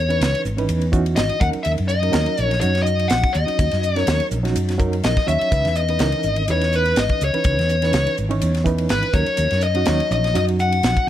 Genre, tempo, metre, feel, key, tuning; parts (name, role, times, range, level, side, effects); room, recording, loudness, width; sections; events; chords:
electric jazz fusion; 124 BPM; 4/4; swing 55% on 16ths; A4 = 437 Hz
dark smooth lead guitar; melody; 0.0-11.1 s; B4 to F#5; -21 LUFS; left 3 dB; overdrive
reed electric piano; accompaniment; 0.0-11.1 s; E3 to C#5; -25 LUFS; right 4 dB; fast tremolo
mellow fretless electric bass; bass; 0.0-11.1 s; G#1 to F#2; -21 LUFS; equal; analog chorus
tight funk drum kit; drums; 0.1-11.1 s; hi-hat, kick drum, ride cymbal, snare drum; -24 LUFS; equal
light reverb, small room ambience; -17 LUFS; side -11 dB against mid
0.0-11.1 A section
0.0 C#m9; 1.4 D#m7; 5.5 C#m9; 9.1 D#m7